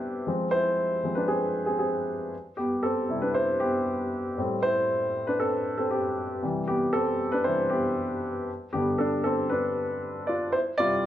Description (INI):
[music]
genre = pop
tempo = 117 BPM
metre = 4/4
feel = straight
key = C major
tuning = A4 = 440 Hz
[part]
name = warm baby grand piano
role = solo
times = 0.0-11.1 s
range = G2 to D5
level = -25 LUFS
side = equal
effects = none
[sound]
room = moderate large studio reverb, RT60 0.8 s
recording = worn, warbling old tape, cassette tape, warbly pitch drift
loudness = -25 LUFS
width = side -12 dB against mid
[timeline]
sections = 0.0-10.5 A section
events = grand piano solo 0.0-10.5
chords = 0.3 Fm; 2.3 C; 4.4 Am7; 6.4 C; 8.5 G; 10.5 Cadd9